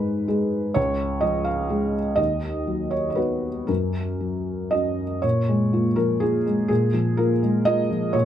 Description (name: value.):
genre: neoclassical minimalist piano.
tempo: 115-129 BPM.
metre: 3/4.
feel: rubato.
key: unclear.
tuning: A4 = 440 Hz.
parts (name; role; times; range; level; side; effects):
felt-muted upright piano; solo; 0.0-8.2 s; Db2 to F5; -20 LUFS; equal; none.
room: light reverb.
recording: dark, warm production.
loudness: -20 LUFS.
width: side -10 dB against mid.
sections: 0.0-5.2 A section; 5.2-8.2 B section.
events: none.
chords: 0.0 N.C.; 0.8 Db; 2.2 B/D#; 3.7 Gb; 5.2 Bbm7.